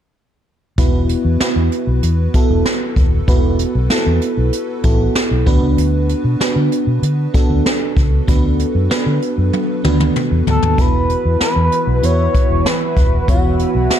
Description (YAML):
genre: 1980s-style pop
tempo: 96 BPM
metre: 4/4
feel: straight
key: unclear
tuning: A4 = 440 Hz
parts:
  - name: FM electric piano with soft pad layer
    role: accompaniment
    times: 0.8-14.0 s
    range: B3 to C#5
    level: -19 LUFS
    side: right 2 dB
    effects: chorus, shimmer reverb
  - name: vintage muted fingered electric bass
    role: bass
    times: 0.8-13.9 s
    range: D#1 to D3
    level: -16 LUFS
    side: equal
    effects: none
  - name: jazz brush drum kit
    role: drums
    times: 0.8-14.0 s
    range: hi-hat, kick drum, snare drum, toms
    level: -17 LUFS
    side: equal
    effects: none
  - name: expressive synth lead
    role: melody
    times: 10.5-14.0 s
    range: F#4 to C#5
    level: -18 LUFS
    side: equal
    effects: chorus, shimmer reverb
  - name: phased analog pad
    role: sustained chords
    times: 11.1-14.0 s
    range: E3 to B4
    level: -23 LUFS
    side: equal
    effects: phaser, chorus, shimmer reverb
room: moderate digital room reverb, RT60 1.3 s, studio reverb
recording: dark, warm production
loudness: -13 LUFS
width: side -10 dB against mid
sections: 0.8-10.8 A section; 10.8-14.0 B section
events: drum fill 9.5-10.8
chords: 0.8 Esus2; 5.5 Bm; 10.8 Esus2